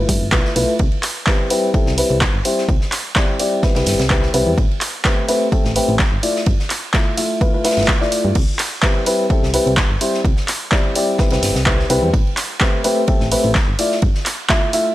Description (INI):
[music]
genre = piano house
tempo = 127 BPM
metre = 4/4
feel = swing 54% on 16ths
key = C major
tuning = A4 = 440 Hz
[part]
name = bright grand piano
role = riff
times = 0.0-14.9 s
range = G3 to E5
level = -19 LUFS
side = left 1 dB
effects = sidechain pumping, low-pass filter
[part]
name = solid FM bass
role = bass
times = 0.0-14.1 s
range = G1 to G2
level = -21 LUFS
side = equal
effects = sidechain pumping
[part]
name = electronic kick drum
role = drums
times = 0.1-14.6 s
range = none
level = -17 LUFS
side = equal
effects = overdrive, studio reverb
[part]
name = natural country drum kit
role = drums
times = 0.1-14.9 s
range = ride cymbal, snare drum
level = -29 LUFS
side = right 2 dB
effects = high-pass filter on cymbals, studio reverb, high-pass filter on snare, high-pass filter on room
[part]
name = punchy analog drum machine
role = drums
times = 0.1-14.8 s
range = crash cymbal, handclaps, hi-hat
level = -21 LUFS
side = right 1 dB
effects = overdrive, studio reverb
[sound]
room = small room ambience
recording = dry, gritty hardware recording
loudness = -14 LUFS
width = side -15 dB against mid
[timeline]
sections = 0.0-14.9 A section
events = none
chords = 0.0 G13; 0.8 Cmaj7; 4.6 Am9; 6.2 G13 (rootless); 8.4 Cmaj7; 12.1 Am9; 13.8 G7sus2 (rootless)